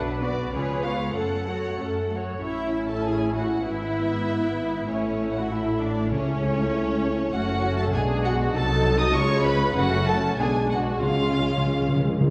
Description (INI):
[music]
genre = quick classical-period movement for symphony orchestra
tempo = 97 BPM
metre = 2/4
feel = straight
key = A major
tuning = A4 = 440 Hz
[part]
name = muted chamber violin section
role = second line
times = 0.0-12.0 s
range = C#4 to Eb5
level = -31 LUFS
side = equal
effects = none
[part]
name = muted chamber viola section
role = accompaniment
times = 0.0-12.1 s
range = E#3 to E#4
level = -32 LUFS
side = equal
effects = none
[part]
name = muted chamber cello section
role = bass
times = 0.0-12.3 s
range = F#2 to B4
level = -34 LUFS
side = equal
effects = none
[part]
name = muted chamber double bass section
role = bass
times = 0.0-12.1 s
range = F#1 to F#2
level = -32 LUFS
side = equal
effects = none
[part]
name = muted chamber violin section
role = melody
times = 0.2-12.0 s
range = C#5 to Eb6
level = -34 LUFS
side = equal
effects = none
[part]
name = dark French horn section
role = sustained chords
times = 2.4-12.0 s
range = Gb3 to E#4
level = -32 LUFS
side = equal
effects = none
[part]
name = timpani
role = percussion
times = 6.1-7.0, 9.8-12.3 s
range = F#2 to C#3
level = -30 LUFS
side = equal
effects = none
[sound]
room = wet scoring stage reverb, RT60 1.9 s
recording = heard from further back in the room, nothing above 10.3 kHz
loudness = -24 LUFS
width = mono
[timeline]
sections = 0.0-2.4 A section; 2.4-12.3 B section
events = timpani fill 11.0-12.3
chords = 0.0 Bm; 0.5 C#7; 1.2 F#m; 2.4 A; 3.7 E/G#; 4.9 A5; 6.1 A/C#; 7.3 F#m; 8.0 G#dim/B; 8.6 Cdim7; 9.2 C#; 9.8 F#m; 10.4 G#dim/B; 11.0 C#